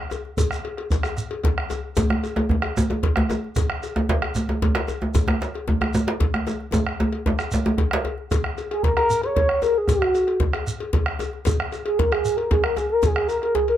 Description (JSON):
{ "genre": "west african traditional, West African drum ensemble", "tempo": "152 BPM (dotted quarters)", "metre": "12/8", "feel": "straight", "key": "unclear", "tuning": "A4 = 440 Hz", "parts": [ { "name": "bombo", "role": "percussion", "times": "0.1-13.5 s", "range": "none", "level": "-24 LUFS", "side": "right 1 dB", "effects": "none" }, { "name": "cowbell", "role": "percussion", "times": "0.1-13.8 s", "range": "none", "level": "-32 LUFS", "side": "left 5 dB", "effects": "none" }, { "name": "djembe", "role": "percussion", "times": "0.1-13.7 s", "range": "none", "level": "-29 LUFS", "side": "left 3 dB", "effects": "none" }, { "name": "shekere", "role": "percussion", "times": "0.1-13.4 s", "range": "none", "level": "-30 LUFS", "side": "right 2 dB", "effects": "none" }, { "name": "djembe", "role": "percussion", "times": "2.0-8.0 s", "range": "none", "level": "-23 LUFS", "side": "right 1 dB", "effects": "none" }, { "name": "mellow horn-like synth lead", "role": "melody", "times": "8.7-13.8 s", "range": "F#4 to C#5", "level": "-20 LUFS", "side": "equal", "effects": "chorus, plate reverb" } ], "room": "moderate small room reverb, RT60 0.5 s", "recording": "none", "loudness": "-20 LUFS", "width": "side -11 dB against mid", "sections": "0.0-8.3 A section; 8.3-13.8 B section", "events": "drum fill 6.7-8.3", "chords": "none" }